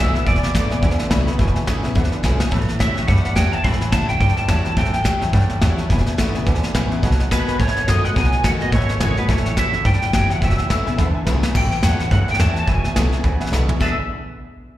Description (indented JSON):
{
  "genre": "rockabilly",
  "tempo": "213 BPM",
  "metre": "4/4",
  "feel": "swing 58% on 8ths",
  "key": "E mixolydian",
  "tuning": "A4 = 440 Hz",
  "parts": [
    { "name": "electric guitar through a small old amp", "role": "melody", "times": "0.0-14.0 s", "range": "B4 to B5", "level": "-23 LUFS", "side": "equal", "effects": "ensemble chorus, slapback echo, analog delay" },
    { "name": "honky-tonk upright piano", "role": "accompaniment", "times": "0.0-14.0 s", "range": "B4 to B5", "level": "-33 LUFS", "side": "right 2 dB", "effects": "slapback echo" },
    { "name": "picked steel-string acoustic guitar", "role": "accompaniment", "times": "0.0-13.9 s", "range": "E2 to F#4", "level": "-26 LUFS", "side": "left 4 dB", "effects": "slapback echo" },
    { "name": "clean electric guitar", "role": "riff", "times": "0.0-13.9 s", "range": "E2 to G#4", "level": "-27 LUFS", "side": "right 3 dB", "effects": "lush chorus, slapback echo" },
    { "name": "upright bass", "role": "bass", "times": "0.0-14.0 s", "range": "E1 to A2", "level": "-20 LUFS", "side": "equal", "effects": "none" },
    { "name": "soft brush drum kit", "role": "drums", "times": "0.2-13.9 s", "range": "crash cymbal, hi-hat, kick drum, snare drum, toms", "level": "-21 LUFS", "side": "equal", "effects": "none" }
  ],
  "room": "small room ambience",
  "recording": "live gig heard through the venue's PA, recital hall reverb",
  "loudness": "-16 LUFS",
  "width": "side -14 dB against mid",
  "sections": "0.0-11.5 A section; 11.5-13.8 B section",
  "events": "drum fill 2.2, 11.0-11.5, 13.5; honky-tonk piano fill 11.1-11.5",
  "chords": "0.0 E7; 2.5 A7; 5.9 E7; 7.0 B7; 9.3 A7; 10.4 E7; 11.5 A7; 12.7 E7",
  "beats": "| 0.27 0.55 0.83 1.11 | 1.39 1.68 1.96 2.24 | 2.52 2.80 3.08 3.36 | 3.65 3.93 4.21 4.49 | 4.77 5.06 5.34 5.62 | 5.90 6.18 6.47 6.75 | 7.03 7.32 7.60 7.88 | 8.16 8.44 8.73 9.01 | 9.29 9.57 9.86 10.14 | 10.42 10.70 10.98 11.27 | 11.55 11.83 12.11 12.40 | 12.68 12.96 13.24 13.53 | 13.81"
}